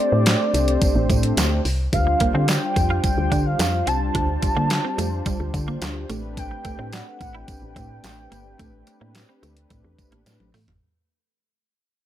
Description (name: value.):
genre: early-eighties boogie funk.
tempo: 108 BPM.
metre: 4/4.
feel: straight.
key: unclear.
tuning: A4 = 440 Hz.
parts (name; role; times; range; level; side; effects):
warm velvety synth lead; melody; 0.0-10.3 s; D5 to A5; -26 LUFS; equal; chorus.
mellow synth brass; accompaniment; 0.0-10.5 s; G3 to C5; -27 LUFS; left 1 dB; chorus.
woody FM bass; bass; 0.1-10.8 s; G1 to D3; -23 LUFS; equal; none.
crisp 8-bit digital drum machine; drums; 0.3-10.8 s; handclaps, hi-hat, kick drum, snare drum, toms; -24 LUFS; equal; none.
tambourine; percussion; 0.3-10.7 s; none; -36 LUFS; right 7 dB; none.
semi-hollow electric guitar; riff; 2.1-10.6 s; G3 to F4; -31 LUFS; right 4 dB; analog chorus.
room: digital ambience.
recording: none.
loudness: -19 LUFS.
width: side -12 dB against mid.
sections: 0.0-10.8 A section.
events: fade-out 0.0-10.8; drum fill 10.3-10.8.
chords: 0.0 Am7; 1.9 Dm7; 6.1 Am11.